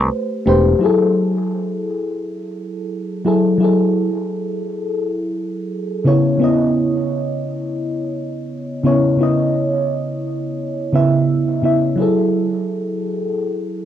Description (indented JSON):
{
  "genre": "sunset chillout",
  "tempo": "86 BPM",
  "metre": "4/4",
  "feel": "swing 57% on 16ths",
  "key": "F# minor",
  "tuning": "A4 = 440 Hz",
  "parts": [
    { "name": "mellow FM electric piano", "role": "accompaniment", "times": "0.0-13.8 s", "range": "C#3 to E5", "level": "-16 LUFS", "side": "moving between left 3 dB and right 4 dB", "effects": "chorus, phaser, auto-pan, cassette tape, analog delay" },
    { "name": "fingered electric bass", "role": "bass", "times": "0.0-0.7 s", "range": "E1", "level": "-14 LUFS", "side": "equal", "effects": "none" }
  ],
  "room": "wet studio reverb, RT60 0.6 s",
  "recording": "home recording on cassette",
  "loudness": "-16 LUFS",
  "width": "side -10 dB against mid",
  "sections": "0.8-13.8 A section",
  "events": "none",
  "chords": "0.0 Am9; 0.8 F#m9; 6.1 C#m9; 12.0 F#m9",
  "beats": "0.13 | 0.82 1.52 2.22 2.92 | 3.62 4.31 5.01 5.71 | 6.41 7.10 7.80 8.50 | 9.20 9.89 10.59 11.29 | 11.99 12.68 13.38"
}